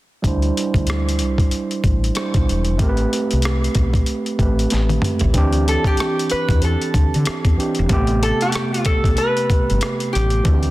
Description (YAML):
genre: R&B, neo-soul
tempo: 94 BPM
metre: 4/4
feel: swing 60% on 16ths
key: unclear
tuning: A4 = 438 Hz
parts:
  - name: overdriven tine electric piano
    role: accompaniment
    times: 0.2-10.7 s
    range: C3 to C5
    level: -22 LUFS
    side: right 2 dB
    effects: low-pass filter
  - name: boom bap sampler-style drum kit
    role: drums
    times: 0.2-10.7 s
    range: hi-hat, kick drum, rim click, snare drum, toms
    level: -20 LUFS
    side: equal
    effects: soft clipping on snare
  - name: woody fretless electric bass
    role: bass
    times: 0.3-10.7 s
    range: E1 to D3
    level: -19 LUFS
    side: equal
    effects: none
  - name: metal-body resonator slide guitar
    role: melody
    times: 5.7-10.7 s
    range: G4 to B4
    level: -22 LUFS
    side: equal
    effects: slapback echo
room: light reverb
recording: dense, heavily limited modern master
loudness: -16 LUFS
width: side -17 dB against mid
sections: 0.2-5.3 A section; 5.3-10.7 B section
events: filter sweep on tine electric piano 0.2-5.3; drum fill 4.7-5.3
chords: 0.2 D9sus4; 2.8 Am9; 5.3 D9sus4; 7.9 Am9